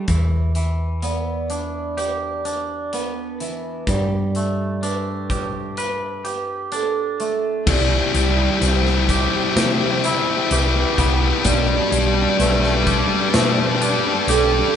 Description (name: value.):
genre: post-rock.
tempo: 63 BPM.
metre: 4/4.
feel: straight.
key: G major.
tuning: A4 = 436 Hz.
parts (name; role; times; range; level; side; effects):
twangy electric guitar; arpeggios; 0.0-14.8 s; B2 to B4; -25 LUFS; right 2 dB; none.
hollow-body short-scale picked electric bass; bass; 0.0-14.6 s; B1 to C3; -22 LUFS; equal; none.
vibraphone with medium hard mallets; arpeggios; 0.1-14.8 s; A4 to E5; -26 LUFS; right 4 dB; none.
big rock drum kit; drums; 0.1-14.5 s; crash cymbal, hi-hat, kick drum, snare drum; -25 LUFS; left 1 dB; none.
rich studio string section; sustained chords; 7.7-14.8 s; G4 to B5; -28 LUFS; left 1 dB; none.
sludgy distorted guitar; riff; 7.7-14.8 s; D4 to G4; -20 LUFS; left 5 dB; overdrive.
room: wet stone room reverb, RT60 1.1 s.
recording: band playing live in one room, nothing above 10.6 kHz.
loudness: -17 LUFS.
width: side -8 dB against mid.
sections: 0.0-7.7 A section; 7.7-14.8 B section.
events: build-up 7.7-14.8.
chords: 0.1 Em7; 3.9 Gadd9; 7.7 Cmaj7; 11.5 Gadd9/B.